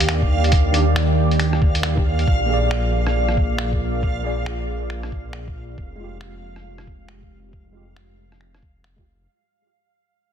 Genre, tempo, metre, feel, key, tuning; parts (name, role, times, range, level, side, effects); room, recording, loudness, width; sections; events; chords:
future garage; 137 BPM; 4/4; swing 62% on 16ths; F dorian; A4 = 440 Hz
tine electric piano; accompaniment; 0.0-9.0 s; Eb3 to D5; -29 LUFS; right 3 dB; overdrive, medium stereo tremolo, sidechain pumping, low-pass filter, digital delay
deep dark ambient pad; sustained chords; 0.0-9.2 s; Eb3 to D5; -26 LUFS; right 2 dB; chorus, built-in reverb, vintage 12-bit sampler grit, sidechain pumping
dark detuned saw bass; bass; 0.0-9.3 s; F1 to Eb2; -22 LUFS; equal; sidechain pumping
lo-fi sampler-style drum kit; drums; 0.0-8.9 s; finger snaps, hi-hat, rim click; -27 LUFS; left 1 dB; small room ambience, soft clipping on snare
backwards swelling texture; texture; 0.0-9.3 s; F5; -28 LUFS; right 3 dB; built-in reverb
electronic kick drum; drums; 0.2-9.0 s; -21 LUFS; equal; small room ambience
little or no reverb; dense, heavily limited modern master; -17 LUFS; side -8 dB against mid
0.0-9.3 A section
fade-out 0.0-9.3; filter sweep on tine electric piano 0.0-9.3
0.0 Ebmaj7; 2.3 Bb7; 5.8 Fmadd9